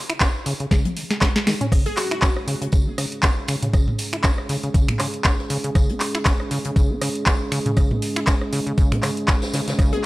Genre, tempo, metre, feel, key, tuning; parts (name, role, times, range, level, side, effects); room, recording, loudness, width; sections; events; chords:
acid house; 119 BPM; 4/4; swing 56% on 16ths; A4 = 445 Hz
acid bass, saw; riff; 0.1-10.0 s; C#3 to E4; -28 LUFS; equal; analog delay
booming analog drum machine; drums; 0.1-10.1 s; crash cymbal, finger snaps, handclaps, hi-hat, rim click, snare drum, toms; -23 LUFS; equal
electronic kick drum; drums; 0.2-9.9 s; -19 LUFS; equal
soft-mallet drum kit; drums; 0.2-10.1 s; hi-hat, snare drum, tambourine; -35 LUFS; left 1 dB; high-pass filter on hats, high-pass filter on snare, high-pass filter on perc, high-pass filter on room
dark analog pad; sustained chords; 1.7-10.1 s; G#3 to G#4; -28 LUFS; right 1 dB; chorus, sidechain pumping
glassy wavetable pluck; melody; 1.9-2.2, 9.9-10.0 s; F#4 to G#4; -28 LUFS; left 1 dB; chorus, tape echo
small room ambience; dry, gritty hardware recording; -18 LUFS; side -19 dB against mid
0.0-10.1 A section
drum fill 0.7-1.7
0.0 C#5